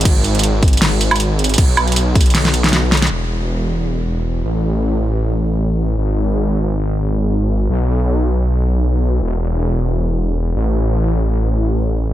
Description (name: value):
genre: future bass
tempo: 157 BPM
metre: 4/4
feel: swing 54% on 16ths, half-time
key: unclear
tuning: A4 = 440 Hz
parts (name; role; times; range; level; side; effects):
- wide detuned saw bass; bass; 0.0-12.1 s; E1 to B1; -16 LUFS; equal; chorus, sidechain pumping
- pop drum kit; drums; 0.0-3.1 s; crash cymbal, hi-hat, snare drum, woodblock; -17 LUFS; right 1 dB; low-pass filter on hats, low-pass filter on snare, low-pass filter on cymbals, low-pass filter on perc
- electronic kick drum; drums; 0.1-2.2 s; none; -13 LUFS; equal; none
room: little or no reverb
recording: none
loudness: -14 LUFS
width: side -13 dB against mid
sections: 0.0-3.1 A section; 3.1-12.1 B section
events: drop 0.0-3.1; drum fill 2.3-3.1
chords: none